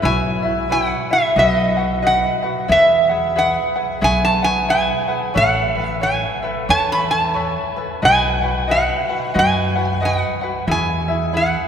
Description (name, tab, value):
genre	Hawaiian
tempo	90 BPM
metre	4/4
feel	swing 61% on 8ths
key	E major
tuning	A4 = 442 Hz
part	tenor ukulele	accompaniment	0.0-11.7 s	E4 to F#5	-22 LUFS	left 1 dB	none
part	upright bass	bass	0.0-11.5 s	A1 to F#2	-23 LUFS	equal	none
part	metal-body resonator slide guitar	melody	0.1-11.7 s	D#5 to B5	-17 LUFS	right 1 dB	none
room	wet cathedral reverb, RT60 5.4 s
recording	recorded in a church or concert hall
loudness	-15 LUFS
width	side -8 dB against mid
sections	0.0-11.7 A section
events	none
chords	0.0 Bsus4; 1.4 B; 2.7 Eadd9; 5.4 Aadd9; 8.0 B; 10.7 E